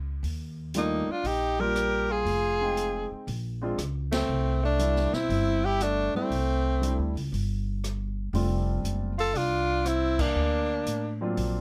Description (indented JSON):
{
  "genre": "jazz, small-group swing and bop",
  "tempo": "118 BPM",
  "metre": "4/4",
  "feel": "swing 67% on 8ths",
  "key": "F major from 8.3 s",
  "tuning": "A4 = 440 Hz",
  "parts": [
    { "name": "upright bass", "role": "bass", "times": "0.0-11.6 s", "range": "F1 to A2", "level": "-32 LUFS", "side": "equal", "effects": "none" },
    { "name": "open jazz drum kit", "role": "drums", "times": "0.2-11.5 s", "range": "crash cymbal, hi-hat, kick drum, ride cymbal, rim click, snare drum", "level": "-39 LUFS", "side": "equal", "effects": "none" },
    { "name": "warm concert grand piano", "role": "accompaniment", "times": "0.7-11.6 s", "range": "F#3 to G5", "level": "-34 LUFS", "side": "equal", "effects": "none" },
    { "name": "clear tenor saxophone", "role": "melody", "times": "0.8-11.2 s", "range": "C4 to Bb4", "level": "-30 LUFS", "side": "equal", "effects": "none" },
    { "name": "clear alto saxophone", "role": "second line", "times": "0.8-11.2 s", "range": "A3 to G4", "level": "-36 LUFS", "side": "equal", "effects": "none" }
  ],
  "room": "little or no reverb",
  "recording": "close, detailed microphones",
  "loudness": "-28 LUFS",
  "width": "mono",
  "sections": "0.0-8.3 A section; 8.3-11.6 B section",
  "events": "band accent 4.0, 10.1",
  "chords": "0.2 Ebmaj9#11; 2.3 Fm7; 3.3 Bb9; 4.3 C69; 8.3 F6; 10.4 D7alt",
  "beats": "| 0.24 0.75 1.25 1.76 | 2.27 2.77 3.28 3.79 | 4.29 4.80 5.30 5.81 | 6.32 6.82 7.33 7.84 | 8.34 8.85 9.35 9.86 | 10.37 10.87 11.38"
}